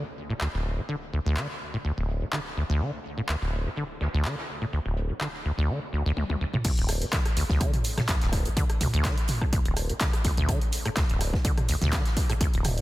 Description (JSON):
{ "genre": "acid house", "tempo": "125 BPM", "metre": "4/4", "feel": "swing 54% on 16ths", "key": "unclear", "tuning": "A4 = 443 Hz", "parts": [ { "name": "acid bass, saw", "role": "riff", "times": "0.0-12.8 s", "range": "D1 to D3", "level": "-28 LUFS", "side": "equal", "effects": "wide subtle chorus, sidechain pumping, analog delay" }, { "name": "soft-mallet drum kit", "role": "drums", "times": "0.2-12.8 s", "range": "hi-hat, snare drum", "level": "-43 LUFS", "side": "right 2 dB", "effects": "none" }, { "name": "punchy analog drum machine", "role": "drums", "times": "0.4-12.8 s", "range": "crash cymbal, handclaps, hi-hat, rim click, toms", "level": "-32 LUFS", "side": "equal", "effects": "none" }, { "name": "electronic kick drum", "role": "drums", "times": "6.6-12.5 s", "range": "none", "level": "-26 LUFS", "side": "equal", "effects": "none" } ], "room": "light reverb, studio reverb", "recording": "dense, heavily limited modern master", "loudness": "-25 LUFS", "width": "side -17 dB against mid", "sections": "0.0-6.6 A section; 6.6-12.8 B section", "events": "drum fill 6.2-6.6; drop 6.6-12.8", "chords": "none" }